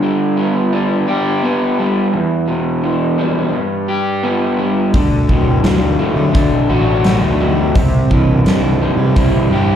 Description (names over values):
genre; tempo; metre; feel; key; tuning
classic rock; 85 BPM; 4/4; straight; G major; A4 = 440 Hz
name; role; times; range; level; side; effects
crunchy overdriven guitar; riff; 0.0-9.8 s; E2 to G4; -14 LUFS; equal; slapback echo
fuzz fingered electric bass; bass; 4.9-9.8 s; A1 to D3; -16 LUFS; equal; overdrive
huge arena drum kit; drums; 4.9-9.3 s; hi-hat, kick drum, snare drum; -16 LUFS; equal; none
room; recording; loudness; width
light reverb; live gig heard through the venue's PA, club reverb; -12 LUFS; side -9 dB against mid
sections
0.0-9.8 A section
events
none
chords
0.0 G; 2.1 Em; 3.5 G; 4.9 D; 7.8 C